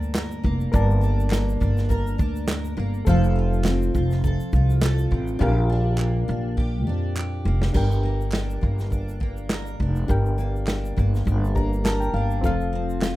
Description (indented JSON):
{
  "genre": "acoustic pop",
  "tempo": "102 BPM",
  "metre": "4/4",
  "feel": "swing 55% on 16ths",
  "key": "unclear",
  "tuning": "A4 = 440 Hz",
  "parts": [
    { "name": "picked steel-string acoustic guitar", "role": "accompaniment", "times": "0.0-13.2 s", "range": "G2 to Bb4", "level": "-29 LUFS", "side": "equal", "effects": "double-tracked left and right" },
    { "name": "reed electric piano", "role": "accompaniment", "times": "0.0-13.2 s", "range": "C4 to Bb5", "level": "-31 LUFS", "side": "left 2 dB", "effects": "fast tremolo" },
    { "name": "upright bass", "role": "bass", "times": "0.0-13.2 s", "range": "F1 to F2", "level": "-22 LUFS", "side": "equal", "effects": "none" },
    { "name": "natural country drum kit", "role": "drums", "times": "0.0-13.2 s", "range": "crash cymbal, kick drum, shaker, snare drum", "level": "-26 LUFS", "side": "equal", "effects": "none" },
    { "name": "group handclap", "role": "percussion", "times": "0.1-13.2 s", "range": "none", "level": "-35 LUFS", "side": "right 3 dB", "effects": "none" }
  ],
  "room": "studio ambience",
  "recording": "rough home demo mix",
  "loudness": "-20 LUFS",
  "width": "side -16 dB against mid",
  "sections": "0.0-7.7 A section; 7.7-13.2 B section",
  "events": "drum fill 5.4-7.7; reed electric piano fill 11.3-12.4",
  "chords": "0.0 Gm; 3.1 F; 5.4 Bb6; 12.4 F",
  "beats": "0.14 | 0.73 1.31 1.90 2.48 | 3.07 3.65 4.24 4.82 | 5.41 5.99 6.58 7.16 | 7.75 8.33 8.92 9.51 | 10.09 10.68 11.27 11.85 | 12.44 13.03"
}